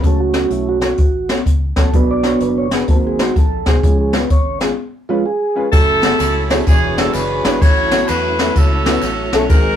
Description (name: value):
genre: uptempo gospel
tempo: 127 BPM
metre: 4/4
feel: swing 64% on 8ths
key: unclear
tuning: A4 = 439 Hz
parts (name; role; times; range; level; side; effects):
- clear upright piano; accompaniment; 0.0-9.8 s; G#2 to E5; -22 LUFS; left 2 dB; none
- mellow tonewheel organ; sustained chords; 0.0-9.8 s; E#3 to D5; -19 LUFS; right 3 dB; slow rotary speaker
- fingered electric bass; bass; 0.0-9.8 s; E1 to E2; -24 LUFS; equal; none
- jazz brush drum kit; drums; 0.0-9.6 s; crash cymbal, hi-hat, kick drum, ride cymbal, snare drum; -15 LUFS; left 1 dB; none
- bright saxophone section; melody; 5.7-9.8 s; B3 to C#5; -17 LUFS; equal; none
- tambourine and handclaps; percussion; 5.7-9.6 s; none; -33 LUFS; left 3 dB; none
room: moderate studio reverb, RT60 0.6 s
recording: rough rehearsal-room recording, warm saturation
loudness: -13 LUFS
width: side -9 dB against mid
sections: 0.0-5.7 A section; 5.7-9.8 B section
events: tonewheel organ solo 0.0-5.7; break 4.8-5.7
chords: 0.0 F#m; 1.9 Bm; 2.9 G#7; 3.8 C#; 5.7 F#m9; 6.7 E13; 7.6 A6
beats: | 0.03 0.51 0.98 1.46 | 1.93 2.41 2.88 3.36 | 3.83 4.30 4.78 5.25 | 5.72 6.19 6.67 7.14 | 7.61 8.08 8.55 9.03 | 9.50